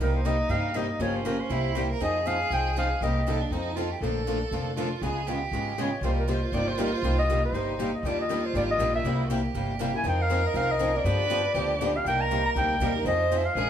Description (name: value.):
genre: acoustic string swing (jazz manouche).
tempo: 239 BPM.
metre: 4/4.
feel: swing 57% on 8ths.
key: C minor.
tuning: A4 = 440 Hz.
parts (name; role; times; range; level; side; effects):
breathy clarinet; melody; 0.0-3.4, 5.8-13.7 s; Bb4 to Bb5; -28 LUFS; left 1 dB; none.
clear violin; second line; 0.0-13.7 s; Db4 to C5; -32 LUFS; right 4 dB; none.
picked steel-string acoustic guitar; accompaniment; 0.0-13.7 s; C3 to Bb4; -33 LUFS; right 3 dB; none.
picked swing-style acoustic guitar; accompaniment; 0.0-13.7 s; C3 to Bb4; -32 LUFS; left 5 dB; none.
upright bass; bass; 0.0-13.7 s; F1 to G2; -30 LUFS; equal; none.
room: wet large studio reverb, RT60 1.1 s.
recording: band playing live in one room.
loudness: -24 LUFS.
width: side -9 dB against mid.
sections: 0.0-8.0 A section; 8.0-13.7 B section.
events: none.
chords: 0.0 Cm7; 1.0 Gm7b5; 1.5 C7; 2.0 Fm7; 3.0 Cm7; 3.5 F7; 4.0 Bbmaj7; 5.0 Db7#11; 6.0 Cm7; 8.0 Ebmaj7; 9.0 C7; 10.0 Fm7; 11.1 G7; 12.1 Cm7; 13.1 Fm7.